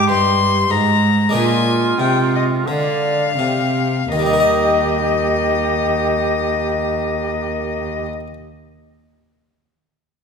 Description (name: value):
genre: classical, baroque-style sonata movement with continuo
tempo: 41-50 BPM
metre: 4/4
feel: straight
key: Eb major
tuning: A4 = 440 Hz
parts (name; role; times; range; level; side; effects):
- rich violin; melody; 0.0-8.1 s; Eb5 to C6; -20 LUFS; left 7 dB; none
- bright silver concert flute; second line; 0.0-8.1 s; F4 to D5; -22 LUFS; right 5 dB; none
- harpsichord; accompaniment; 0.0-8.3 s; G2 to Eb5; -22 LUFS; left 2 dB; none
- rich cello; bass; 0.0-8.0 s; Eb2 to D3; -20 LUFS; right 2 dB; none
room: wet recital hall reverb, RT60 1.6 s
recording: none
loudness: -15 LUFS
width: side -6 dB against mid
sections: 0.0-4.1 A section; 4.1-9.9 B section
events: slowing down 0.0-4.1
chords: 0.0 Eb; 1.3 Bb7; 4.1 Eb